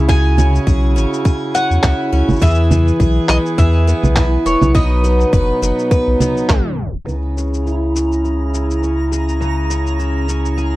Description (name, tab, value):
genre	folktronica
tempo	103 BPM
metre	4/4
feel	swing 56% on 16ths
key	C# dorian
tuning	A4 = 440 Hz
part	mandolin	melody	0.0-6.7 s	C#5 to G#5	-22 LUFS	left 1 dB	tape echo
part	hand-pumped harmonium	sustained chords	0.0-10.8 s	C#3 to B4	-23 LUFS	right 2 dB	low-pass filter
part	picked twelve-string acoustic guitar	arpeggios	0.0-10.8 s	B2 to B4	-19 LUFS	equal	low-pass filter
part	warm sub bass	bass	0.0-10.8 s	E1 to E2	-16 LUFS	equal	none
part	electronic cabasa, congas and handclaps	drums	0.1-10.7 s	none	-20 LUFS	right 2 dB	none
part	electronic kick drum	drums	0.1-6.6 s	none	-14 LUFS	equal	none
part	twinkling granular texture	texture	7.7-10.8 s	A#5	-29 LUFS	right 2 dB	built-in reverb
room	little or no reverb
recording	dry, close 1970s-style studio recording, tape stop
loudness	-13 LUFS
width	side -17 dB against mid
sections	0.0-7.1 A section; 7.1-10.8 B section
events	band accent 6.5; tape stop 6.5-7.1; filter sweep on twelve-string acoustic guitar 7.1-10.8; filter sweep on harmonium 7.1-10.8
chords	0.0 C#m; 2.4 E; 4.7 B; 7.1 C#m